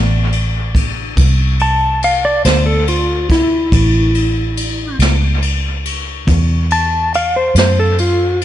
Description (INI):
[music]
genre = slow blues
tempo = 47 BPM (dotted quarters)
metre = 12/8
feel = straight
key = unclear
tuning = A4 = 440 Hz
[part]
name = clean lap steel guitar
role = melody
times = 0.0-8.4 s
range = E4 to A5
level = -16 LUFS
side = equal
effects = dub echo
[part]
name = vintage muted fingered electric bass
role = bass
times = 0.0-8.4 s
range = A1 to F#2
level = -15 LUFS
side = equal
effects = none
[part]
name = jazz brush drum kit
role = drums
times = 0.3-8.4 s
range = kick drum, ride cymbal, snare drum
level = -18 LUFS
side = left 1 dB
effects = dub echo
[sound]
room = small room ambience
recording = echo-heavy mix, nothing above 10.8 kHz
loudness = -12 LUFS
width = side -12 dB against mid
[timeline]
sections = 0.0-8.4 A section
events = electric slide guitar solo 0.0-8.4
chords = 0.0 D7(no3); 3.7 A